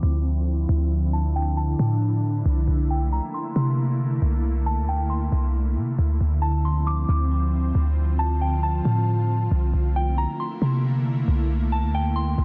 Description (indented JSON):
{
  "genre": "hip hop",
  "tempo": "136 BPM",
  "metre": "4/4",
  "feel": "half-time",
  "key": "D minor",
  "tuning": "A4 = 441 Hz",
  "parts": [
    { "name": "soft synth bell", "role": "melody", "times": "0.0-12.4 s", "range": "G5 to D6", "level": "-33 LUFS", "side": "equal", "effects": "chorus, phaser, low-pass filter, tape echo" },
    { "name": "ethereal airy pad", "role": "sustained chords", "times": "0.0-12.4 s", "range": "D3 to F4", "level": "-30 LUFS", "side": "equal", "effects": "ensemble chorus, built-in reverb, low-pass filter" },
    { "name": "clean 808-style bass", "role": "bass", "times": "0.0-12.4 s", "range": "C2 to C3", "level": "-24 LUFS", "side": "equal", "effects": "none" }
  ],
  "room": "little or no reverb",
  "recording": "dense, heavily limited modern master",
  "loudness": "-23 LUFS",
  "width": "mono",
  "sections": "0.0-12.4 A section",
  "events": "filter sweep 0.0-12.4",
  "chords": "0.0 Dm9; 2.5 C13; 6.0 Dm9; 9.5 C13"
}